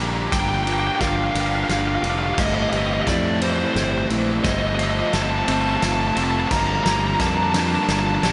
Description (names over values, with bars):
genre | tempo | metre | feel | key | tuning
post-rock | 58 BPM (dotted quarters) | 6/8 | straight | G minor | A4 = 441 Hz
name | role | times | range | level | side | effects
clean electric guitar | arpeggios | 0.0-8.3 s | G3 to Bb4 | -31 LUFS | equal | ensemble chorus, tape echo
fuzz guitar | riff | 0.0-8.3 s | G2 to Bb4 | -27 LUFS | equal | distortion
growling fingered electric bass | bass | 0.0-8.3 s | F1 to F2 | -28 LUFS | equal | overdrive
fuzz lead guitar | melody | 0.3-8.3 s | C5 to Bb5 | -26 LUFS | equal | distortion, tape echo
loose indie drum kit | drums | 0.3-8.3 s | crash cymbal, kick drum, ride cymbal, snare drum | -28 LUFS | equal | none
room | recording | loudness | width
wet cathedral reverb, RT60 6.8 s | dreamy mix soaked in reverb, nothing above 10.9 kHz | -21 LUFS | mono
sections
0.0-8.3 A section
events
build-up 0.0-8.3; drum fill 0.0-8.3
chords
0.0 Gm7; 2.4 Am7b5/G; 4.4 F5/G; 6.5 Gm7